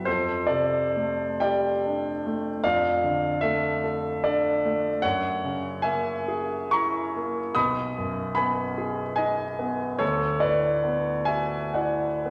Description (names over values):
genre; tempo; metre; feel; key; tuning
classical, impressionist solo piano; 60-78 BPM; 3/4; rubato; unclear; A4 = 443 Hz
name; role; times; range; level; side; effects
warm grand piano; solo; 0.0-12.3 s; B1 to D#6; -26 LUFS; equal; none
room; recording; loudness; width
wet recital hall reverb, RT60 1.8 s; none; -26 LUFS; mono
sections
0.0-12.3 A section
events
none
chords
0.1 F69; 2.6 Dmadd9/F; 5.0 F#9; 7.6 B6; 10.0 D69